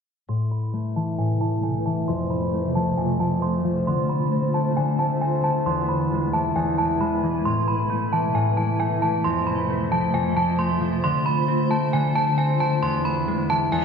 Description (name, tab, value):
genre	hip hop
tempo	134 BPM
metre	4/4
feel	half-time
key	A harmonic minor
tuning	A4 = 439 Hz
part	metallic FM bell	melody	0.3-13.8 s	G#5 to C6	-25 LUFS	right 2 dB	chorus, low-pass filter, ping-pong delay
part	concert harp	accompaniment	0.3-13.8 s	E2 to C4	-23 LUFS	left 2 dB	low-pass filter
part	granular cloud pad	sustained chords	1.2-13.8 s	B2 to C5	-27 LUFS	right 2 dB	built-in reverb, analog chorus, low-pass filter
part	reverse cymbal	sound effects	13.7-13.8 s	none	-35 LUFS	right 7 dB	none
room	wet plate reverb, RT60 2.6 s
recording	dreamy mix soaked in reverb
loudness	-20 LUFS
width	side -6 dB against mid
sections	0.3-13.8 A section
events	filter sweep 0.3-13.8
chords	0.3 Amadd9; 2.1 F; 3.9 Dm7; 5.7 E; 7.5 Amadd9; 9.2 F; 11.0 Dm7; 12.8 E